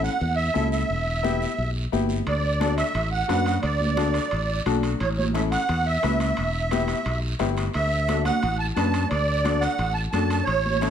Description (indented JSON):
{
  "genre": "latin, cumbia",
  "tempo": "175 BPM",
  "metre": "4/4",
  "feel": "straight",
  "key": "D major",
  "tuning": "A4 = 436 Hz",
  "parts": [
    { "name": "musette accordion", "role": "melody", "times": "0.0-10.9 s", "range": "C#5 to A5", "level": "-26 LUFS", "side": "right 3 dB", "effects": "none" },
    { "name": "bright upright piano", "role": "accompaniment", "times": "0.0-10.9 s", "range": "B3 to B4", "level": "-29 LUFS", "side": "left 11 dB", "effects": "none" },
    { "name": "modern bright fingered electric bass", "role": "bass", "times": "0.0-10.9 s", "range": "E1 to F#2", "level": "-26 LUFS", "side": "equal", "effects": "none" },
    { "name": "guiro", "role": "percussion", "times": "0.0-10.9 s", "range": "none", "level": "-39 LUFS", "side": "right 4 dB", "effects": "none" },
    { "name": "congas", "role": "percussion", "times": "0.2-10.9 s", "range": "none", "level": "-31 LUFS", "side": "right 2 dB", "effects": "none" },
    { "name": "timbales", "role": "percussion", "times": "2.3-10.9 s", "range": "none", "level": "-36 LUFS", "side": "right 1 dB", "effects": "none" }
  ],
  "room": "moderate large studio reverb, RT60 1.1 s",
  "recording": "none",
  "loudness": "-21 LUFS",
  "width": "side -8 dB against mid",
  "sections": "0.0-10.9 A section",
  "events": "none",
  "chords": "0.0 A; 0.9 Em; 2.3 D; 5.0 A; 6.4 Em; 7.7 D"
}